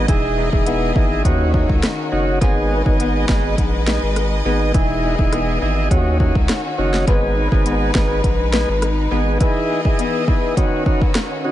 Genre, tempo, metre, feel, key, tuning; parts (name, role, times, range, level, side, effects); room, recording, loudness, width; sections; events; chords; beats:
dancehall; 103 BPM; 4/4; straight; G# minor; A4 = 435 Hz
tonewheel organ; accompaniment; 0.0-11.5 s; B3 to G#4; -22 LUFS; right 2 dB; slow rotary speaker, dub echo
clear studio string section; sustained chords; 0.0-11.5 s; D#3 to D#5; -27 LUFS; left 1 dB; sidechain pumping
fingerpicked steel-string acoustic guitar; arpeggios; 0.0-11.5 s; G#2 to B4; -24 LUFS; left 5 dB; dub echo
saturated sub bass; bass; 0.0-9.4 s; E1 to D#2; -20 LUFS; equal
afro-pop drum kit; drums; 0.1-11.3 s; hi-hat, kick drum, rim click, snare drum; -19 LUFS; equal; dub echo
light reverb; echo-heavy mix, nothing above 10.9 kHz; -15 LUFS; side -13 dB against mid
0.0-11.5 A section
0.1 Emaj7; 1.2 D#m7; 2.4 G#m; 4.7 Emaj7; 5.9 D#m7; 7.1 G#m; 9.4 Emaj7; 10.6 D#m7
| 0.09 0.67 1.25 1.83 | 2.42 3.00 3.58 4.16 | 4.75 5.33 5.91 6.49 | 7.08 7.66 8.24 8.82 | 9.40 9.99 10.57 11.15